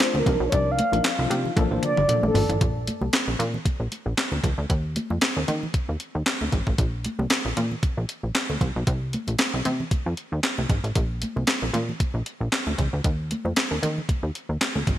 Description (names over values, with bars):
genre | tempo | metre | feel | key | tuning
early-eighties boogie funk | 115 BPM | 4/4 | swing 56% on 16ths | Bb major | A4 = 439 Hz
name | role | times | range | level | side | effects
mellow horn-like synth lead | melody | 0.0-2.6 s | A4 to F5 | -25 LUFS | right 1 dB | chorus, ping-pong delay
tine electric piano | accompaniment | 0.0-2.4 s | F3 to C5 | -29 LUFS | left 3 dB | overdrive, fast stereo tremolo
clean 12-bit digital drum machine | drums | 0.0-15.0 s | handclaps, hi-hat, kick drum, snare drum, toms | -24 LUFS | equal | gated reverb
plucky analog bass | bass | 0.1-15.0 s | G1 to Eb3 | -26 LUFS | equal | none
congas | percussion | 0.1-15.0 s | none | -33 LUFS | right 1 dB | none
room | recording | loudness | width
light reverb | bright 1980s-style digital production | -22 LUFS | side -12 dB against mid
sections
0.0-2.6 A section; 2.6-15.0 B section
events
soft synth lead solo 0.0-2.6; drum fill 1.6-2.6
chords
0.3 Cm11; 1.6 Bbmaj7; 2.6 Bb; 4.7 N.C.; 11.0 Bb; 13.0 N.C.